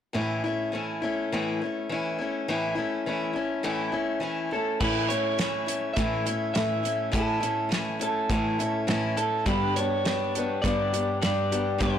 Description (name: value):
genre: folk rock and heartland rock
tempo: 103 BPM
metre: 4/4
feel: straight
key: A mixolydian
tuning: A4 = 440 Hz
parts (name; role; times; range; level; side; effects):
- picked old ladder-braced acoustic guitar; accompaniment; 0.1-12.0 s; G2 to G4; -28 LUFS; left 3 dB; none
- rich cello; bass; 0.1-12.0 s; G2 to A2; -31 LUFS; right 1 dB; none
- electric guitar through a small old amp; melody; 4.5-12.0 s; A4 to E5; -28 LUFS; right 2 dB; digital delay
- damped 70s drum kit; drums; 4.8-11.9 s; crash cymbal, hi-hat, kick drum, snare drum; -30 LUFS; right 1 dB; none
room: light reverb, studio ambience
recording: blown-out, overdriven recording, overdrive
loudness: -25 LUFS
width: side -9 dB against mid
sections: 0.1-4.8 A section; 4.8-12.0 B section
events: none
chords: 0.1 A; 9.5 G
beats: | 0.15 0.73 1.31 1.89 | 2.48 3.06 3.64 4.22 | 4.81 5.39 5.97 6.55 | 7.14 7.72 8.30 8.89 | 9.47 10.05 10.64 11.22 | 11.81